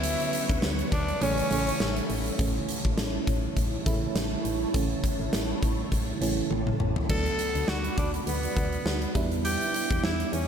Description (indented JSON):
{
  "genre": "1980s-style pop",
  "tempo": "102 BPM",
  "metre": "4/4",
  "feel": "swing 55% on 16ths",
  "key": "unclear",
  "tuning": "A4 = 440 Hz",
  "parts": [
    { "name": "raspy tenor saxophone", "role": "melody", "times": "0.0-2.1, 7.1-10.5 s", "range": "B3 to A4", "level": "-31 LUFS", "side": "left 1 dB", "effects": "ping-pong delay, slapback echo" },
    { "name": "rich studio violin section", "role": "second line", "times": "0.0-2.1 s", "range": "C#5 to E5", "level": "-39 LUFS", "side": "left 3 dB", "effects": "none" },
    { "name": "FM electric piano", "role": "accompaniment", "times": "0.0-10.5 s", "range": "C#3 to E4", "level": "-32 LUFS", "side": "right 4 dB", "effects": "chorus" },
    { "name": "overdriven electric guitar", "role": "accompaniment", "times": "0.0-2.9 s", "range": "A2 to B3", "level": "-39 LUFS", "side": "left 6 dB", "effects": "analog chorus, slapback echo" },
    { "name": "phased analog pad", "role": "sustained chords", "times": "0.0-10.5 s", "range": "G3 to D6", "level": "-37 LUFS", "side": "equal", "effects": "phaser, chorus" },
    { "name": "solid FM bass", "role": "bass", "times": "0.0-10.5 s", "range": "A1 to E2", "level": "-32 LUFS", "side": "left 1 dB", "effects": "none" },
    { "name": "huge arena drum kit", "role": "drums", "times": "0.0-10.5 s", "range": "crash cymbal, hi-hat, kick drum, snare drum, tambourine, toms", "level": "-29 LUFS", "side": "equal", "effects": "none" }
  ],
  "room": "moderate lush hall reverb, RT60 1.7 s, small room reverb",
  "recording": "big arena sound",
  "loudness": "-25 LUFS",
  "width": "side -8 dB against mid",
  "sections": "0.0-2.4 A section; 2.4-7.1 B section; 7.1-10.5 C section",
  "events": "drum fill 6.5-7.1",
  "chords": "0.0 Bmadd9/D; 1.2 A; 7.1 D6; 9.2 Em7"
}